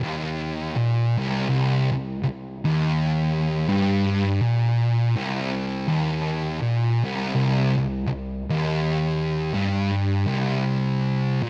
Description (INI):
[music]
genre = metal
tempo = 82 BPM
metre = 4/4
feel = swing 58% on 8ths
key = C minor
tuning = A4 = 441 Hz
[part]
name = thick fuzz guitar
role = solo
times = 0.0-11.5 s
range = C2 to Bb2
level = -24 LUFS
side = equal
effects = distortion
[sound]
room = little or no reverb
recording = none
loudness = -24 LUFS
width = mono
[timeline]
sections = 0.0-7.3 A section; 7.3-11.5 B section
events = none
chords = none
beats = 0.04 0.77 | 1.50 2.23 2.96 3.69 | 4.42 5.15 5.89 6.62 | 7.35 8.08 8.81 9.54 | 10.27 11.01